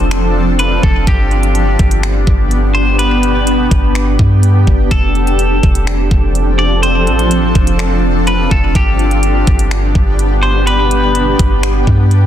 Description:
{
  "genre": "hip hop, atmospheric cloud-rap",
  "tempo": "125 BPM",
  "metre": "4/4",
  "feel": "half-time",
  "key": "unclear",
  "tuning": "A4 = 440 Hz",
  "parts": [
    { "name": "clean electric guitar", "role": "melody", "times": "0.0-12.3 s", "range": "G4 to D5", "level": "-19 LUFS", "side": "equal", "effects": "ping-pong delay" },
    { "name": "granular cloud pad", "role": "sustained chords", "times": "0.0-12.3 s", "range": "F3 to A4", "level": "-16 LUFS", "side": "equal", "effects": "built-in reverb, sidechain pumping" },
    { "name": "soft 808-style bass", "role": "bass", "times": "0.0-12.3 s", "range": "F1 to G2", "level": "-13 LUFS", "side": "equal", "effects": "none" },
    { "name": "trap drum kit", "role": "drums", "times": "0.1-12.2 s", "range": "finger snaps, hi-hat, kick drum", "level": "-14 LUFS", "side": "equal", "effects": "soft clipping on snare" }
  ],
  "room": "little or no reverb",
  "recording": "dense, heavily limited modern master",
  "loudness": "-10 LUFS",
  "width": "side -10 dB against mid",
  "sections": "0.0-12.3 A section",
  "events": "none",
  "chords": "0.0 F6; 1.1 G; 4.9 F6; 8.8 G",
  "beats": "0.11 0.59 | 1.07 1.55 2.03 2.51 | 2.99 3.47 3.95 4.43 | 4.91 5.39 5.87 6.35 | 6.83 7.31 7.79 8.27 | 8.75 9.23 9.71 10.19 | 10.67 11.15 11.63 12.11"
}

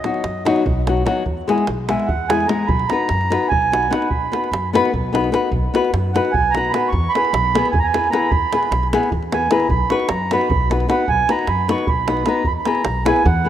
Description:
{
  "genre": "balkan folk, Balkan wedding band",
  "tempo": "301 BPM (eighths)",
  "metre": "7/8",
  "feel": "straight",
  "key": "B major",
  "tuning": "A4 = 440 Hz",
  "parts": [
    { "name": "mellow accordion", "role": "melody", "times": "0.0-13.5 s", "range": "D#5 to C#6", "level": "-20 LUFS", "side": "right 5 dB", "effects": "none" },
    { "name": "nylon-string guitar", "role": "accompaniment", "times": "0.0-13.5 s", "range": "F#3 to B4", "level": "-20 LUFS", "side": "left 4 dB", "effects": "none" },
    { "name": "davul", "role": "percussion", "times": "0.0-13.4 s", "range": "none", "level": "-24 LUFS", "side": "right 2 dB", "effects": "none" },
    { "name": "upright bass", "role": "bass", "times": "0.2-13.5 s", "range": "B1 to F#2", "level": "-23 LUFS", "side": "equal", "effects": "none" }
  ],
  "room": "moderate plate reverb, RT60 3.1 s",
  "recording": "rough home demo mix",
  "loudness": "-16 LUFS",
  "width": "side -10 dB against mid",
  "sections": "0.0-13.5 A section",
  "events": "speeding up 0.0-13.5; accordion solo 0.0-13.5",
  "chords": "0.0 B; 1.3 E; 2.7 B; 6.9 E; 9.7 B; 12.5 E",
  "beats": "0.03 0.24 0.44 0.65 0.85 1.06 | 1.27 1.47 1.68 1.88 2.08 2.29 2.49 | 2.70 2.90 3.10 3.31 3.51 3.71 3.91 | 4.12 4.32 4.52 4.72 4.92 5.12 5.33 | 5.53 5.72 5.93 6.13 6.33 6.53 6.72 | 6.92 7.12 7.32 7.52 7.72 7.92 8.12 | 8.31 8.51 8.71 8.91 9.10 9.30 9.50 | 9.70 9.89 10.09 10.29 10.48 10.68 10.88 | 11.08 11.27 11.47 11.67 11.86 12.06 12.26 | 12.45 12.65 12.85 13.04 13.24 13.44"
}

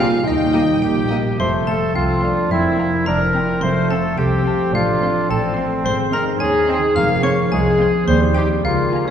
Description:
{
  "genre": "cinematic, playful, whimsical film cue",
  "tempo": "108 BPM",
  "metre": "2/4",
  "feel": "straight",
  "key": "F major, Ab major from 5.8 s",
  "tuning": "A4 = 440 Hz",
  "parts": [
    { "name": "rich chamber violin section", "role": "melody", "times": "0.0-9.1 s", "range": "Eb5 to C6", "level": "-36 LUFS", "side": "left 2 dB", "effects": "none" },
    { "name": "xylophone with wooden mallets", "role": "melody", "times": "0.0-9.1 s", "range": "Eb5 to F6", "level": "-27 LUFS", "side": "left 1 dB", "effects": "none" },
    { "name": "bright clarinet", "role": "second line", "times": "0.0-9.1 s", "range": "E4 to F5", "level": "-21 LUFS", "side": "left 1 dB", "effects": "none" },
    { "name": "clear oboe", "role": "second line", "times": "0.0-9.1 s", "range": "Db4 to F5", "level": "-29 LUFS", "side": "right 2 dB", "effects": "none" },
    { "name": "concert flute", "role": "second line", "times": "0.0-1.2 s", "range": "G5", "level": "-37 LUFS", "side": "left 2 dB", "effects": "none" },
    { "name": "rich studio violin section", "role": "second line", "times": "0.0-9.1 s", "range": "Eb5 to Ab5", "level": "-34 LUFS", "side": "left 1 dB", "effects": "none" },
    { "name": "clear bassoon", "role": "accompaniment", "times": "0.0-9.1 s", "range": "G3 to D4", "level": "-25 LUFS", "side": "right 1 dB", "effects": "none" },
    { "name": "rich chamber viola section", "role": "accompaniment", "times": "0.0-9.1 s", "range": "A3 to G4", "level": "-30 LUFS", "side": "right 2 dB", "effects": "none" },
    { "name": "mellow French horn section", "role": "sustained chords", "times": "0.0-9.1 s", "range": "Bb3 to Bb4", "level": "-24 LUFS", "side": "left 1 dB", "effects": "none" },
    { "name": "concert harp", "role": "arpeggios", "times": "0.0-9.1 s", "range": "Ab2 to Db5", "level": "-23 LUFS", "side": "left 2 dB", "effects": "none" },
    { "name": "clear chamber double bass section", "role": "bass", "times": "0.0-9.1 s", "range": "F1 to Eb2", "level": "-23 LUFS", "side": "right 2 dB", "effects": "none" },
    { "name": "warm symphonic cello section", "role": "bass", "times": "0.0-9.1 s", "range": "C2 to Bb2", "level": "-28 LUFS", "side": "right 2 dB", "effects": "none" }
  ],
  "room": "wet scoring stage reverb, RT60 2.1 s",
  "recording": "heard from further back in the room",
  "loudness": "-15 LUFS",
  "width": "side -8 dB against mid",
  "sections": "0.0-1.4 A section; 1.4-9.1 B section",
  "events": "none",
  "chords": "0.3 Eb; 1.4 F; 2.5 C7/F; 3.6 F; 4.7 F/A; 5.8 Ab; 7.0 Fm; 8.1 Cm/Eb",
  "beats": "| 0.25 0.82 | 1.39 1.95 | 2.51 3.07 | 3.63 4.18 | 4.74 5.29 | 5.85 6.40 | 6.96 7.52 | 8.08 8.64"
}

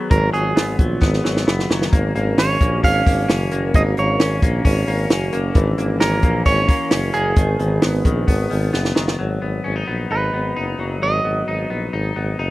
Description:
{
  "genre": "jangly indie pop",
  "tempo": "132 BPM",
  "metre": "4/4",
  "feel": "straight",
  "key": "G# minor",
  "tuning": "A4 = 443 Hz",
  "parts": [
    { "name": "clean electric guitar", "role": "melody", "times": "0.0-12.5 s", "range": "G#4 to E#5", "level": "-21 LUFS", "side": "right 2 dB", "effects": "slapback echo" },
    { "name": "hollow soft pad", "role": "sustained chords", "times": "0.0-9.2 s", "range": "D#3 to B4", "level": "-27 LUFS", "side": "right 1 dB", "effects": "none" },
    { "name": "clean electric guitar", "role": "arpeggios", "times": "0.0-12.5 s", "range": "D#3 to D#4", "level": "-25 LUFS", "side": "left 3 dB", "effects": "lush chorus, slapback echo" },
    { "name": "warm tuba", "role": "bass", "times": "0.1-12.5 s", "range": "F#1 to A#1", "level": "-21 LUFS", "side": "equal", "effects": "none" },
    { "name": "compact cocktail drum kit", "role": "drums", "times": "0.1-9.2 s", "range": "hi-hat, kick drum, snare drum", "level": "-17 LUFS", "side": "equal", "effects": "none" }
  ],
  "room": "little or no reverb",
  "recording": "dry, close 1970s-style studio recording",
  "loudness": "-16 LUFS",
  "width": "side -17 dB against mid",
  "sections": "0.0-9.2 A section; 9.2-12.5 B section",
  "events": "drum fill 1.0-1.9, 8.7-9.2",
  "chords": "0.0 G#m7; 1.9 D#m7; 5.6 F#7/G#; 7.4 G#m; 9.2 G#m7",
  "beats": "| 0.11 0.56 1.02 1.47 | 1.93 2.38 2.83 3.29 | 3.74 4.20 4.65 5.10 | 5.56 6.01 6.46 6.92 | 7.37 7.83 8.28 8.74 | 9.19 9.65 10.11 10.56 | 11.02 11.48 11.94 12.39"
}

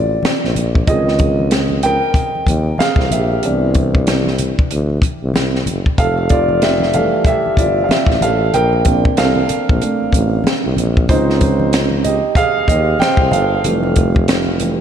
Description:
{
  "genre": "R&B, neo-soul",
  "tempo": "94 BPM",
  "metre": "4/4",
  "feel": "swing 59% on 16ths",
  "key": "F major",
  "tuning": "A4 = 440 Hz",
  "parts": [
    { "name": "dark upright piano", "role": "accompaniment", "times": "0.0-14.8 s", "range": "Eb3 to G5", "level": "-17 LUFS", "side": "right 2 dB", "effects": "slapback echo" },
    { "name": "warm tuba", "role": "bass", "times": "0.0-14.8 s", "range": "F1 to Eb2", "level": "-18 LUFS", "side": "equal", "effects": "none" },
    { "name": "compact cocktail drum kit", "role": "drums", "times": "0.2-14.8 s", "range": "hi-hat, kick drum, snare drum", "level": "-17 LUFS", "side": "equal", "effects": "none" },
    { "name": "congas", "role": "percussion", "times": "0.2-14.8 s", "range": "none", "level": "-27 LUFS", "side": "left 3 dB", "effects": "none" }
  ],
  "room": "moderate lush hall reverb, RT60 2.0 s",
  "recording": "big arena sound",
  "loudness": "-12 LUFS",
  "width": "side -9 dB against mid",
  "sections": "0.0-14.8 A section",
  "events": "upright piano solo 0.0-14.8",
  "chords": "0.0 Bbmaj9; 0.9 Dbmaj9; 3.4 Cmaj9; 6.0 Fmaj9; 8.5 Bbmaj9; 11.1 Dbmaj9; 13.6 Fmaj9",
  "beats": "0.23 | 0.87 1.51 2.15 2.79 | 3.43 4.06 4.70 5.34 | 5.98 6.62 7.26 7.89 | 8.53 9.17 9.81 10.45 | 11.09 11.72 12.36 13.00 | 13.64 14.28"
}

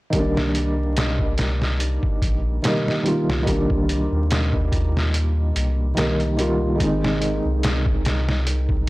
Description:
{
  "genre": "trip hop",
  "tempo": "72 BPM",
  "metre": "4/4",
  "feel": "swing 55% on 16ths",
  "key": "C minor",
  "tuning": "A4 = 440 Hz",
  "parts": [
    { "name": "felt-muted upright piano", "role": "accompaniment", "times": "0.1-8.9 s", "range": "Eb3 to F4", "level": "-23 LUFS", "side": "equal", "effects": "tremolo, tape echo" },
    { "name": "round analog bass", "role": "bass", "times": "0.1-8.9 s", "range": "Ab1 to Eb2", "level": "-23 LUFS", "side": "equal", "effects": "none" },
    { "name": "trip hop sampler-style drum kit", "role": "drums", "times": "0.1-8.9 s", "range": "hi-hat, kick drum, snare drum", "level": "-23 LUFS", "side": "equal", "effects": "small room reverb" }
  ],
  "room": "light reverb, digital ambience",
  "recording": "blown-out, overdriven recording, vinyl crackle, overdrive",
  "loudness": "-19 LUFS",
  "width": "side -20 dB against mid",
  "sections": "0.1-8.9 A section",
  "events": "none",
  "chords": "0.1 Cm7; 6.8 Ab",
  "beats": "| 0.13 0.97 1.80 2.63 | 3.47 4.30 5.13 5.97 | 6.80 7.63 8.47"
}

